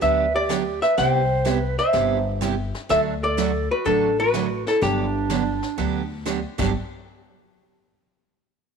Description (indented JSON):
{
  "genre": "country, western swing",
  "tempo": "125 BPM",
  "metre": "4/4",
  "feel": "swing 68% on 8ths",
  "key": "G major",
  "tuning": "A4 = 440 Hz",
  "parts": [
    { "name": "archtop guitar, miked and amplified", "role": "melody", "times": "0.0-6.2 s", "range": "G4 to G5", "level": "-22 LUFS", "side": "left 1 dB", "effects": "none" },
    { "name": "mellow clarinet", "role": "second line", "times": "0.0-6.2 s", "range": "D4 to C5", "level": "-27 LUFS", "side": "right 7 dB", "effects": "none" },
    { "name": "picked steel-string acoustic guitar", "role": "accompaniment", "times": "0.0-6.7 s", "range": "G2 to G4", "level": "-27 LUFS", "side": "right 11 dB", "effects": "none" },
    { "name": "upright bass", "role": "bass", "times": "0.0-6.7 s", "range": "G1 to D2", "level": "-28 LUFS", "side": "left 3 dB", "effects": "none" },
    { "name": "jazz brush drum kit", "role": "drums", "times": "0.0-6.7 s", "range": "brushed snare drum, crash cymbal, hi-hat, kick drum, snare drum", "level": "-34 LUFS", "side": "left 4 dB", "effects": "none" }
  ],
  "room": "moderate plate reverb, RT60 1.8 s, studio ambience",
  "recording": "1960s-style stereo",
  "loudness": "-20 LUFS",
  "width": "side -6 dB against mid",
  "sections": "0.0-6.7 A section; 6.7-8.7 B section",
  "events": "none",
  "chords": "0.0 Gmaj7; 1.0 Cmaj7; 2.9 D; 4.8 Gmaj7; 6.7 N.C.",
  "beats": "0.01 0.50 | 0.98 1.46 1.94 2.42 | 2.90 3.38 3.86 4.34 | 4.82 5.30 5.78 6.26"
}